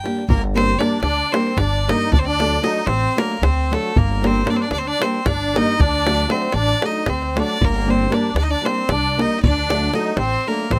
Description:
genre	balkan folk, Balkan wedding band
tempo	230 BPM (eighths)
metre	7/8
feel	straight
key	G harmonic minor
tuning	A4 = 438 Hz
part	bright fiddle	melody	0.0-10.8 s	A4 to G5	-25 LUFS	equal	none
part	nylon-string guitar	accompaniment	0.0-10.7 s	F#3 to Bb4	-24 LUFS	equal	none
part	davul	percussion	0.1-10.8 s	none	-23 LUFS	equal	none
part	musette accordion	second line	0.3-10.8 s	A3 to Eb4	-27 LUFS	equal	none
part	upright bass	bass	0.3-10.8 s	G1 to D2	-24 LUFS	equal	none
room	little or no reverb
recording	close, detailed microphones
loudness	-19 LUFS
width	mono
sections	0.3-10.8 A section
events	none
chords	0.3 Gm; 2.1 D; 4.0 Gm; 5.8 D; 7.6 Gm; 9.4 D

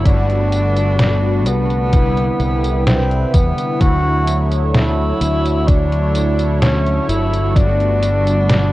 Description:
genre	vaporwave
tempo	64 BPM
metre	4/4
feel	straight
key	D major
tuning	A4 = 436 Hz
part	mellow tenor saxophone	melody	0.0-8.7 s	B3 to F#4	-20 LUFS	equal	tape echo
part	mellow synth brass	accompaniment	0.0-8.7 s	C3 to C#5	-21 LUFS	right 1 dB	phaser, wide subtle chorus
part	warbly tape-like pad	sustained chords	0.0-8.7 s	G3 to C#6	-29 LUFS	left 1 dB	chorus, built-in reverb
part	modern bright fingered electric bass	bass	0.0-8.7 s	G1 to E2	-17 LUFS	equal	none
part	detuned 8-bit digital drum machine	drums	0.1-8.7 s	hi-hat, snare drum, tambourine	-19 LUFS	equal	none
part	electronic kick drum	drums	0.1-7.7 s	none	-14 LUFS	equal	none
room	light reverb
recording	worn, warbling old tape, cassette tape, warbly pitch drift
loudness	-13 LUFS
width	side -17 dB against mid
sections	0.0-8.7 A section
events	none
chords	0.1 Gmaj9; 1.9 Cmaj7; 3.8 Dmaj7; 7.6 Gmaj9

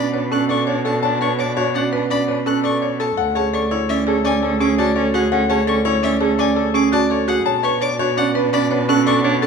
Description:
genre	classical, minimalist pattern music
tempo	168 BPM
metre	6/4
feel	straight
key	unclear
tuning	A4 = 437 Hz
part	clear concert grand piano	melody	0.0-9.5 s	G#4 to A5	-21 LUFS	left 8 dB	none
part	warm soprano saxophone	second line	0.0-9.5 s	C#4 to D4	-26 LUFS	right 4 dB	none
part	buzzing marimba with medium hard mallets	arpeggios	0.0-9.5 s	C#4 to C#5	-20 LUFS	right 6 dB	none
part	rich violin	arpeggios	0.0-9.5 s	E5 to F#6	-26 LUFS	left 4 dB	none
part	rich cello	bass	0.0-9.5 s	D2 to B2	-23 LUFS	right 2 dB	none
room	wet recital hall reverb, RT60 1.7 s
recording	none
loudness	-16 LUFS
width	side -6 dB against mid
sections	0.0-9.5 A section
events	none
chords	0.0 Bm7; 3.2 Dmaj9; 7.5 Bm7

